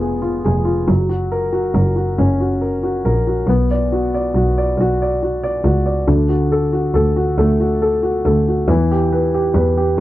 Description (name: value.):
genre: six-eight pop ballad.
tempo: 46 BPM (dotted quarters).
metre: 6/8.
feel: straight.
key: unclear.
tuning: A4 = 437 Hz.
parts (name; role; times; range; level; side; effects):
warm baby grand piano; accompaniment; 0.0-10.0 s; D3 to D5; -17 LUFS; left 1 dB; none.
clear double bass; bass; 0.0-10.0 s; F1 to E2; -18 LUFS; right 1 dB; none.
room: light reverb.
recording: dry, close 1970s-style studio recording.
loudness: -14 LUFS.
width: side -15 dB against mid.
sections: 0.0-10.0 A section.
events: none.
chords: 0.0 Fdim; 0.9 F#; 3.5 Bm; 6.1 D; 8.7 Em.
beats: | 0.89 2.19 | 3.49 4.79 | 6.09 7.38 | 8.68 9.98.